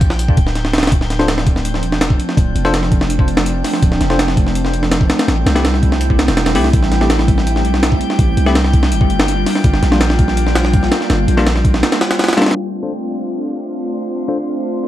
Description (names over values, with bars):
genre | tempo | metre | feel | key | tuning
drum and bass, jungle | 165 BPM | 4/4 | straight | D minor | A4 = 441 Hz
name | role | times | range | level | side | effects
long sustained 808-style bass | bass | 0.0-11.8 s | D1 to C2 | -17 LUFS | equal | none
breakbeat sampler-style drum kit | drums | 0.0-12.6 s | hi-hat, kick drum, snare drum | -15 LUFS | equal | small room ambience
drifting glass-harmonics texture | texture | 0.0-14.9 s | C5 to G6 | -27 LUFS | equal | chorus, built-in reverb
airy breathy pad | sustained chords | 1.2-14.9 s | F3 to F4 | -20 LUFS | equal | chorus
bell-like tine electric piano | stabs | 1.2-14.4 s | G3 to C5 | -22 LUFS | left 2 dB | low-pass filter, dub echo
room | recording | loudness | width
light reverb, digital ambience | vinyl crackle, low-pass filter | -12 LUFS | side -13 dB against mid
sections
0.0-12.6 A section; 12.6-14.9 B section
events
filter sweep on tine electric piano 12.6-14.9; filter sweep 12.6-14.9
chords
0.0 Gm; 0.9 Dm7; 5.3 Am7; 8.9 Gm7; 12.6 Dm7